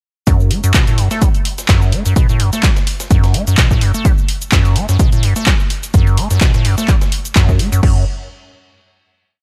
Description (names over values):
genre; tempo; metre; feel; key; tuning
acid house; 127 BPM; 4/4; swing 55% on 16ths; F# minor pentatonic; A4 = 444 Hz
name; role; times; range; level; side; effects
acid bass, square; riff; 0.3-8.0 s; F#2 to A3; -17 LUFS; equal; tube saturation, lush chorus, digital delay
breakbeat sampler-style drum kit; drums; 0.3-7.7 s; hi-hat, snare drum; -32 LUFS; equal; none
electronic kick drum; drums; 0.3-7.9 s; none; -16 LUFS; equal; none
punchy analog drum machine; drums; 0.3-7.9 s; crash cymbal, handclaps, hi-hat, shaker; -22 LUFS; equal; none
room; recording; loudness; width
little or no reverb; none; -14 LUFS; mono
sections
0.3-7.8 drop; 7.8-9.4 final note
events
drop 0.3-7.8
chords
none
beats
| 0.27 0.74 1.22 1.69 | 2.16 2.63 3.10 3.58 | 4.05 4.52 5.00 5.47 | 5.94 6.41 6.88 7.36 | 7.83